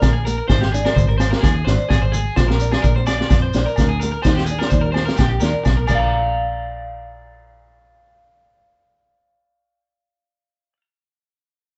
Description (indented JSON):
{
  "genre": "highlife guitar band",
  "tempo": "128 BPM",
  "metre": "4/4",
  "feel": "swing 54% on 16ths",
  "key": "Bb mixolydian",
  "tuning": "A4 = 440 Hz",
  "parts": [
    { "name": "fingerpicked old ladder-braced acoustic guitar", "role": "accompaniment", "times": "0.0-6.2 s", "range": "G3 to F4", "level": "-28 LUFS", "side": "equal", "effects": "none" },
    { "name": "electric guitar at the edge of break-up", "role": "arpeggios", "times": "0.0-10.8 s", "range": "G4 to Bb5", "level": "-26 LUFS", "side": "equal", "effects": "harmonic tremolo" },
    { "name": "fingered electric bass", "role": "bass", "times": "0.0-10.7 s", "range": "Ab1 to F2", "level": "-23 LUFS", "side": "equal", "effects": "none" },
    { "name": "vintage drum kit", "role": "drums", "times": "0.0-6.0 s", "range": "crash cymbal, kick drum, snare drum", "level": "-21 LUFS", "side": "equal", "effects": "none" },
    { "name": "agogo bells", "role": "percussion", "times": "0.0-6.2 s", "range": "none", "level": "-31 LUFS", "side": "equal", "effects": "none" },
    { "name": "congas", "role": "percussion", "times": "0.0-2.3 s", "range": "none", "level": "-29 LUFS", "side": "equal", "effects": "none" },
    { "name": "maracas", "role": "percussion", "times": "0.0-6.3 s", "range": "none", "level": "-39 LUFS", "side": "equal", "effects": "none" }
  ],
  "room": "moderate studio ambience, RT60 0.5 s",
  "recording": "band playing live in one room, nothing above 7.9 kHz",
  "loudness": "-18 LUFS",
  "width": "mono",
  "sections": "0.0-6.1 A section; 6.1-9.9 B section",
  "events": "none",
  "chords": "0.5 Ab; 2.4 Bb; 4.2 Eb; 5.9 Bb"
}